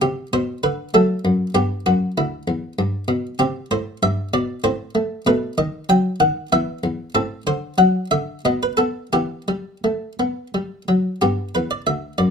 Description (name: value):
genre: classical, baroque-style suite movement for harpsichord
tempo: 84-98 BPM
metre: 3/4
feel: rubato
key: E minor from 3.4 s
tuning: A4 = 441 Hz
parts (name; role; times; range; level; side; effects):
- buff-stop harpsichord; solo; 0.0-12.3 s; D2 to G5; -18 LUFS; equal; none
room: light reverb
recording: minimal, uncompressed stereo recording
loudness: -18 LUFS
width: side -6 dB against mid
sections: 0.0-11.2 A section; 11.2-12.3 A section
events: none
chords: 0.0 N.C.; 0.9 F#m; 1.6 Em; 3.4 C5; 4.7 Am; 5.3 B7; 6.5 E5; 7.2 F#dim/A; 8.5 N.C.; 9.1 Em; 11.2 G